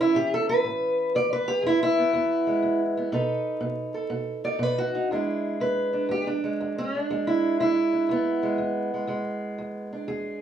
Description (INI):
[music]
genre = acoustic country blues, solo or duo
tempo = 121 BPM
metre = 4/4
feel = swing 67% on 8ths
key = E mixolydian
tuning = A4 = 442 Hz
[part]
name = fingerpicked steel-string acoustic guitar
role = solo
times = 0.0-10.4 s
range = E2 to D5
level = -23 LUFS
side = right 1 dB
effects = none
[sound]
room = moderate studio ambience, RT60 0.4 s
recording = band playing live in one room, vinyl crackle, small room ambience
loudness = -23 LUFS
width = side -9 dB against mid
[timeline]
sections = 0.0-5.1 A section; 5.1-10.4 B section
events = steel-string acoustic guitar solo 0.0-5.1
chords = 0.0 A; 1.1 E; 3.1 B7; 5.1 E7